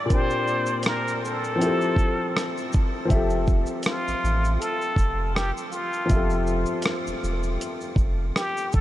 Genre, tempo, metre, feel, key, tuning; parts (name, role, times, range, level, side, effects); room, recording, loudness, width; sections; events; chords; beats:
lo-fi hip hop; 80 BPM; 4/4; swing 56% on 16ths; F major; A4 = 440 Hz
trumpet with plunger mute; melody; 0.0-8.8 s; F4 to D5; -28 LUFS; equal; low-pass filter, analog delay
warm upright piano; accompaniment; 0.0-8.8 s; Bb2 to E5; -27 LUFS; left 2 dB; low-pass filter
dusty soul sampler-style drum kit; drums; 0.1-8.8 s; hi-hat, kick drum, rim click, shaker; -26 LUFS; equal; vintage 12-bit sampler grit
warm sub bass; bass; 3.1-8.8 s; E1 to A1; -26 LUFS; equal
moderate huge ambient reverb, RT60 8.2 s; dreamy mix soaked in reverb; -22 LUFS; side -14 dB against mid
0.0-3.1 A section; 3.1-8.8 B section
0.1 Bb69; 1.6 Fmaj9; 3.1 Fmaj7
| 0.10 0.85 1.60 2.35 | 3.10 3.85 4.60 5.35 | 6.10 6.85 7.60 8.35